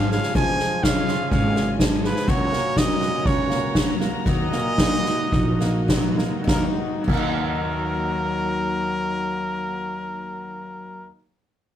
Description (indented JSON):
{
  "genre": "indie folk with a building arrangement",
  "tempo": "100-125 BPM",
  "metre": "4/4",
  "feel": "straight",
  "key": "Eb minor",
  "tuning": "A4 = 442 Hz",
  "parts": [
    { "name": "bright trumpet", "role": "melody", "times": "0.0-11.1 s", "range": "Bb4 to Ab5", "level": "-26 LUFS", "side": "right 1 dB", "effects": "none" },
    { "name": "mellow French horn", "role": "second line", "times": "0.0-11.1 s", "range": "Ab2 to Gb3", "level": "-32 LUFS", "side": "left 4 dB", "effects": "none" },
    { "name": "picked twelve-string acoustic guitar", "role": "accompaniment", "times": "0.0-11.2 s", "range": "Db3 to Gb4", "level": "-33 LUFS", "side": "left 5 dB", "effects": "none" },
    { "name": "rich chamber string section", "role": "sustained chords", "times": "0.0-10.5 s", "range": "Eb3 to Bb5", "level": "-35 LUFS", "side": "equal", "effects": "none" },
    { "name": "warm upright piano", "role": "arpeggios", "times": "0.0-11.1 s", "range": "F3 to Gb4", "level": "-30 LUFS", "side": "right 3 dB", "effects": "none" },
    { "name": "upright bass", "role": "bass", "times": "0.0-11.1 s", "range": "Ab1 to Eb2", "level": "-27 LUFS", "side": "equal", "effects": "none" },
    { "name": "soft-mallet drum kit", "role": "drums", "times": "0.1-7.2 s", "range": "crash cymbal, kick drum, snare drum", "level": "-22 LUFS", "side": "equal", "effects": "none" }
  ],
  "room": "light reverb",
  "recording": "rough rehearsal-room recording",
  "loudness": "-20 LUFS",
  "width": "side -10 dB against mid",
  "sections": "0.0-6.5 A section; 6.5-11.3 B section",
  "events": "slowing down 2.3-6.5",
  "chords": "0.0 Db; 2.3 Gb/Db; 4.3 Ebm"
}